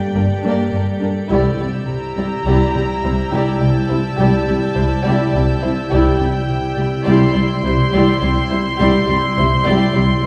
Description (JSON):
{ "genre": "cinematic, suspense film score", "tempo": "52 BPM", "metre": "4/4", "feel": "straight", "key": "unclear", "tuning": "A4 = 440 Hz", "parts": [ { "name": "dark chamber violin section", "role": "melody", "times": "0.0-10.3 s", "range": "G5 to C6", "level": "-26 LUFS", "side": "equal", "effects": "none" }, { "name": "icy glass pad", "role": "sustained chords", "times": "0.0-10.3 s", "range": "E4 to D5", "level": "-27 LUFS", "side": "equal", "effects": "chorus, built-in reverb" }, { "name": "concert harp", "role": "riff", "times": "0.0-10.3 s", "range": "G2 to C4", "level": "-26 LUFS", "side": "equal", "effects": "none" }, { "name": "dark chamber viola section", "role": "accompaniment", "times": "0.1-10.3 s", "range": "G3 to E4", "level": "-22 LUFS", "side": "equal", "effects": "none" }, { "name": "dark studio double bass section", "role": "bass", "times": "0.1-10.0 s", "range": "G1 to C2", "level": "-24 LUFS", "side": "equal", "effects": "none" }, { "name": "warm chamber cello section", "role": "bass", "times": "0.1-10.0 s", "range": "C2 to G2", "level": "-24 LUFS", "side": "equal", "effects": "none" }, { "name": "warm chamber violin section", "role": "second line", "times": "0.2-10.3 s", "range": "E4 to D5", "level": "-27 LUFS", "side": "equal", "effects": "none" }, { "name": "dark chamber violin section", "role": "texture", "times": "1.3-9.9 s", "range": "E6 to G6", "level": "-38 LUFS", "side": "equal", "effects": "none" } ], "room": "wet concert hall reverb, RT60 1.9 s", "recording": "recorded in a church or concert hall, vinyl crackle", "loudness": "-16 LUFS", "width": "mono", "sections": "0.0-10.3 A section", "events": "none", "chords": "0.0 Gmadd9; 1.3 Cadd9", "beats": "0.15 | 1.30 2.46 3.61 4.76 | 5.92 7.07 8.22 9.38" }